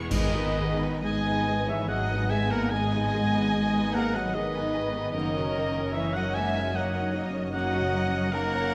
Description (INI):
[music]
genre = cinematic, emotional film score for orchestra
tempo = 74 BPM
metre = 3/4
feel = rubato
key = G# minor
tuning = A4 = 440 Hz
[part]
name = muted studio violin section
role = second line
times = 0.0-8.7 s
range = G#4 to C#6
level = -43 LUFS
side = equal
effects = none
[part]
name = felt-muted upright piano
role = accompaniment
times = 0.0-8.7 s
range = F#2 to C#5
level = -37 LUFS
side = equal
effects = none
[part]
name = muted studio viola section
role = accompaniment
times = 0.0-8.7 s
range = G#3 to G#4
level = -39 LUFS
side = equal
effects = none
[part]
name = concert harp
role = arpeggios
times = 0.0-8.7 s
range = E2 to G#5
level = -42 LUFS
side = equal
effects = none
[part]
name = muted studio violin section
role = melody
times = 0.1-8.7 s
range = A#4 to F#5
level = -38 LUFS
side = equal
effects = none
[part]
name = mellow hollow silver concert flute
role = second line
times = 0.1-8.7 s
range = D#5 to A#5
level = -38 LUFS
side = equal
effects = none
[part]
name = warm cor anglais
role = second line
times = 0.1-8.7 s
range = A#4 to G#5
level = -34 LUFS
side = equal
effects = none
[part]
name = mellow French horn section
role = sustained chords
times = 0.1-8.7 s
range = D#3 to A#3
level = -36 LUFS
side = equal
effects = none
[part]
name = muted studio cello section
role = bass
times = 0.1-8.7 s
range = D#3 to A#3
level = -36 LUFS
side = equal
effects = none
[part]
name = muted studio double bass section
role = bass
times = 0.1-8.7 s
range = F#1 to G#1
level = -35 LUFS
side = equal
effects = none
[part]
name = clash cymbals and concert bass drum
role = percussion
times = 0.1-1.8 s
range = none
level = -36 LUFS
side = equal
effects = none
[part]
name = timpani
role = percussion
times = 0.1-1.4 s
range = G#2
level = -39 LUFS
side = equal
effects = none
[sound]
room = wet scoring stage reverb, RT60 1.6 s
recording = none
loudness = -27 LUFS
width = mono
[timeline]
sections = 0.1-8.7 A section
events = band accent 0.1-1.0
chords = 0.1 G#m; 5.1 D#m7/F#